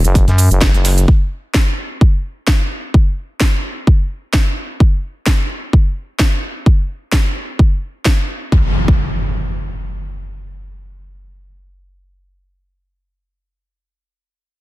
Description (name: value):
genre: bass house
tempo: 129 BPM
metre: 4/4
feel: swing 55% on 16ths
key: unclear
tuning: A4 = 440 Hz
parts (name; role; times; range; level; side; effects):
- growling FM bass; bass; 0.0-1.1 s; F#1 to F#2; -12 LUFS; equal; tube saturation, sidechain pumping
- house drum kit; drums; 0.0-8.2 s; hi-hat, shaker, snare drum; -20 LUFS; equal; none
- dusty soul sampler-style drum kit; drums; 0.1-1.1 s; hi-hat, snare drum; -27 LUFS; right 2 dB; overdrive, sidechain pumping on hats, high-pass filter on hats, high-pass filter on snare
- electronic kick drum; drums; 0.2-9.0 s; none; -12 LUFS; equal; none
- impact; sound effects; 8.5-12.3 s; none; -21 LUFS; equal; none
room: little or no reverb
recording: dense, heavily limited modern master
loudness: -13 LUFS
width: side -18 dB against mid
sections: 0.0-8.5 A section; 8.5-12.2 B section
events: none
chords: none